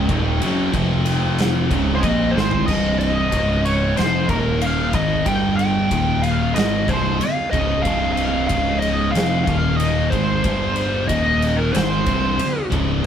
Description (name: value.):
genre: stoner and doom metal.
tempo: 93 BPM.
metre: 4/4.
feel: straight.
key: C minor.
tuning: A4 = 440 Hz.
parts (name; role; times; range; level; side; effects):
analog drone; sustained chords; 0.0-13.1 s; C4 to G5; -35 LUFS; right 2 dB; none.
scooped high-gain guitar; riff; 0.0-13.1 s; C2 to Bb3; -27 LUFS; left 1 dB; distortion.
thick fuzz guitar; riff; 0.0-13.1 s; C2 to Bb3; -24 LUFS; left 5 dB; distortion.
thick fuzz guitar; riff; 0.0-13.1 s; C2 to Bb3; -24 LUFS; right 6 dB; distortion.
growling picked electric bass; bass; 0.0-13.0 s; C1 to Bb1; -25 LUFS; equal; overdrive.
oversized low-tuned drum kit; drums; 0.1-12.9 s; crash cymbal, kick drum, ride cymbal, snare drum, toms; -24 LUFS; equal; none.
fuzz lead guitar; melody; 1.9-12.7 s; Bb4 to G5; -22 LUFS; equal; wah, distortion.
room: moderate studio reverb, RT60 0.6 s.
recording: band playing live in one room.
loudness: -17 LUFS.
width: side -8 dB against mid.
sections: 0.0-2.7 A section; 2.7-13.1 B section.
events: drum fill 2.4-2.7.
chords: 0.0 Cm; 0.7 F5; 1.7 Cm; 3.3 Db5; 4.0 C5; 4.3 Eb5; 4.9 Cm; 5.3 G5; 5.9 Eb5; 6.6 Cm; 8.5 Db5; 9.1 C5; 9.5 Eb5; 10.1 Cm; 10.4 G5; 11.1 Eb5; 11.7 Cm.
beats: | 0.10 0.74 1.39 2.03 | 2.67 3.32 3.97 4.61 | 5.26 5.91 6.55 7.20 | 7.85 8.50 9.14 9.79 | 10.44 11.09 11.73 12.38 | 13.03.